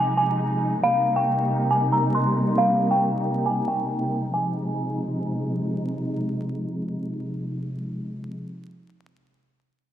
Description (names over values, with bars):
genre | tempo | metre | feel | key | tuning
hip hop | 137 BPM | 4/4 | half-time | F minor | A4 = 442 Hz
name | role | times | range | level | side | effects
dark detuned synth bell | melody | 0.0-5.6 s | F5 to C6 | -23 LUFS | equal | chorus, low-pass filter, digital delay
dark studio string section | sustained chords | 0.0-8.4 s | C3 to Eb4 | -25 LUFS | equal | low-pass filter
room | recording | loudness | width
light reverb | dark, warm production, vinyl crackle | -22 LUFS | side -10 dB against mid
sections
0.0-4.3 A section; 4.3-7.8 B section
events
filter sweep 0.0-4.3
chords
0.0 Fm7; 0.8 Cm7; 4.3 Fm7